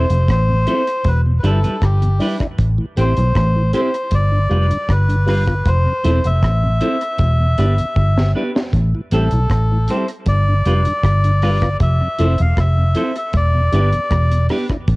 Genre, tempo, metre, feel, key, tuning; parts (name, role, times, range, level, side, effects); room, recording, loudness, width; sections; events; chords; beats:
roots reggae; 78 BPM; 4/4; straight; A4 = 438 Hz
melodica; melody; 0.0-14.5 s; G4 to F5; -22 LUFS; left 1 dB; dub echo
clean electric guitar; accompaniment; 0.0-14.7 s; G3 to C5; -24 LUFS; right 1 dB; cassette tape, dub echo
vintage muted fingered electric bass; bass; 0.0-15.0 s; E1 to B1; -15 LUFS; equal
mellow tonewheel organ; accompaniment; 0.1-14.8 s; E2 to G4; -24 LUFS; left 1 dB; slow rotary speaker, cassette tape
deep reggae drum kit; drums; 0.1-15.0 s; hi-hat, kick drum, rim click, snare drum; -23 LUFS; equal; cassette tape
little or no reverb; home recording on cassette; -14 LUFS; side -23 dB against mid
0.0-15.0 A section
drum fill 8.0-8.7
0.0 Fmaj7; 1.1 Em7; 2.6 Am7; 4.1 G7; 5.7 Fmaj7; 7.2 Em7; 8.7 Am7; 10.3 G7; 11.8 Fmaj7; 13.3 Em7
0.28 1.05 1.82 | 2.59 3.35 4.12 4.89 | 5.66 6.43 7.20 7.96 | 8.73 9.50 10.27 11.04 | 11.81 12.57 13.34 14.11 | 14.88